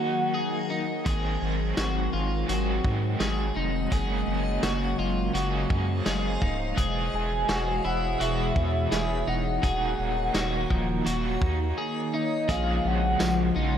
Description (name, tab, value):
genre	dream pop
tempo	84 BPM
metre	4/4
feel	straight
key	unclear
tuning	A4 = 443 Hz
part	warm velvety synth lead	melody	0.0-0.7, 7.1-13.6 s	Eb5 to G#5	-30 LUFS	equal	chorus, tremolo, ping-pong delay
part	crunchy overdriven guitar	accompaniment	0.0-13.8 s	Ab2 to Ab4	-34 LUFS	right 3 dB	tremolo, wide subtle chorus
part	hollow soft pad	sustained chords	0.0-13.8 s	B2 to G#4	-31 LUFS	left 1 dB	ensemble chorus
part	electric guitar at the edge of break-up	arpeggios	0.0-13.8 s	F3 to Ab4	-32 LUFS	left 2 dB	analog chorus, ping-pong delay
part	backwards swelling texture	texture	0.0-13.8 s	Ab4 to Gb5	-39 LUFS	right 1 dB	built-in reverb, ping-pong delay
part	saturated sub bass	bass	1.1-13.8 s	Db1 to Ab2	-29 LUFS	equal	none
part	loose indie drum kit	drums	1.1-13.4 s	hi-hat, kick drum, snare drum, tambourine	-30 LUFS	equal	none
room	moderate concert hall reverb, RT60 2.5 s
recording	none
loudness	-24 LUFS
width	side -9 dB against mid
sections	0.0-12.5 A section; 12.5-13.8 B section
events	none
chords	0.0 Ebm; 1.1 Ab7; 3.9 Gbadd9; 6.8 E; 9.6 Ebmadd9; 12.5 Bbm7